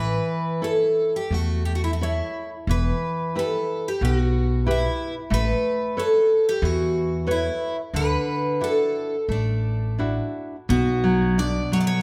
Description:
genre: fado-style ballad.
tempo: 90 BPM.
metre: 4/4.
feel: uneven beats, rubato.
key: D major.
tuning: A4 = 440 Hz.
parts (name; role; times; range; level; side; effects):
picked twelve-string acoustic guitar; melody; 0.0-12.0 s; D4 to D5; -26 LUFS; equal; none.
nylon-string guitar; accompaniment; 0.0-12.0 s; B2 to C#5; -28 LUFS; equal; none.
upright bass; bass; 0.0-11.6 s; E1 to E2; -27 LUFS; equal; none.
room: moderate recital hall reverb, RT60 1.4 s.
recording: none.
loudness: -23 LUFS.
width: mono.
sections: 0.0-10.7 A section; 10.7-12.0 B section.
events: none.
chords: 0.0 A; 2.7 Em; 5.3 Aadd9; 7.9 Dadd9; 10.7 Bm.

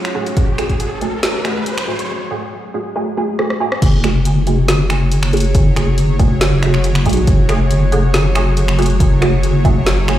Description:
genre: deep dubstep.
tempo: 139 BPM.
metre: 4/4.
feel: half-time.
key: F# minor.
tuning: A4 = 435 Hz.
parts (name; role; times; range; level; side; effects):
bowed-like drone; sustained chords; 0.0-10.2 s; F#3 to C#5; -25 LUFS; equal; built-in reverb.
filtered dub chord stab; stabs; 0.0-10.2 s; A3 to G#4; -21 LUFS; right 2 dB; phaser, ensemble chorus, cassette tape, dub echo.
deep soft wobble bass; bass; 0.0-10.2 s; F#1 to B1; -14 LUFS; equal; chorus, high-pass filter.
deep house drum kit; drums; 0.0-10.2 s; crash cymbal, finger snaps, hi-hat, rim click, snare drum; -21 LUFS; equal; none.
riser; sound effects; 0.0-2.1 s; none; -25 LUFS; equal; none.
electronic kick drum; drums; 0.4-0.8, 3.8-9.7 s; none; -14 LUFS; equal; none.
room: light reverb.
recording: played on a big sound system in a bare room, large studio reverb.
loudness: -13 LUFS.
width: side -12 dB against mid.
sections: 0.0-3.8 A section; 3.8-10.2 B section.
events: build-up 0.0-3.8; riser 0.0-2.1; drum fill 3.4-3.8; drop 3.8-10.2.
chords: 0.0 F#madd9.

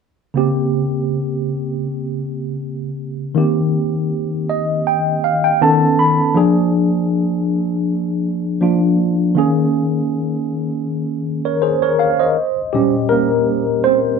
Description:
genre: R&B.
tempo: 80 BPM.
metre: 4/4.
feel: swing 55% on 16ths.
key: Bb dorian.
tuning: A4 = 442 Hz.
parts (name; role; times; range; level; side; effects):
tine electric piano; solo; 0.3-14.2 s; Bb2 to B5; -15 LUFS; equal; overdrive, medium stereo tremolo.
room: moderate studio reverb, RT60 0.6 s.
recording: band playing live in one room.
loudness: -15 LUFS.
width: side -5 dB against mid.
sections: 0.3-12.3 A section; 12.3-14.2 B section.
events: tine electric piano fill 4.1-6.3; tine electric piano solo 12.3-14.2.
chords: 0.3 Bbm69; 3.4 Cm7; 5.6 B9; 6.3 Bb7; 9.3 Eb7sus4; 12.3 Bbm69.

